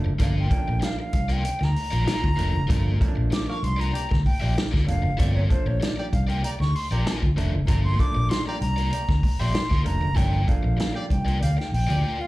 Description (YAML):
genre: funk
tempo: 96 BPM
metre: 4/4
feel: straight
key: G minor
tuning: A4 = 440 Hz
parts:
  - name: crunchy overdriven guitar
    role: accompaniment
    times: 0.0-12.2 s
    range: F4 to E5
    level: -35 LUFS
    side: left 4 dB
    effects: slapback echo
  - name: mellow clav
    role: stabs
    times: 0.0-11.4 s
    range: F3 to D4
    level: -32 LUFS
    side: right 4 dB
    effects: slapback echo
  - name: fingered electric bass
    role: bass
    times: 0.0-12.0 s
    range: F1 to D2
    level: -23 LUFS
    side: equal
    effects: none
  - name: breathy silver concert flute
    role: melody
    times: 0.2-12.3 s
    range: C5 to D6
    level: -31 LUFS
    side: equal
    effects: slapback echo
  - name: vintage drum kit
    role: drums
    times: 0.2-12.0 s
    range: hi-hat, kick drum, snare drum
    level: -25 LUFS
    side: equal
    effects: none
  - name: warm horn section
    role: second line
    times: 3.5-12.1 s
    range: Bb3 to F5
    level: -36 LUFS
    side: right 1 dB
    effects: slapback echo
room: studio ambience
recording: live gig heard through the venue's PA, club reverb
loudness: -21 LUFS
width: side -18 dB against mid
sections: 0.0-12.3 A section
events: flute solo 0.0-12.3; break 12.0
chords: 0.0 Gm7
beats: | 0.20 0.83 1.45 2.07 | 2.70 3.32 3.94 4.57 | 5.19 5.81 6.44 7.06 | 7.68 8.30 8.93 9.55 | 10.17 10.79 11.42 12.04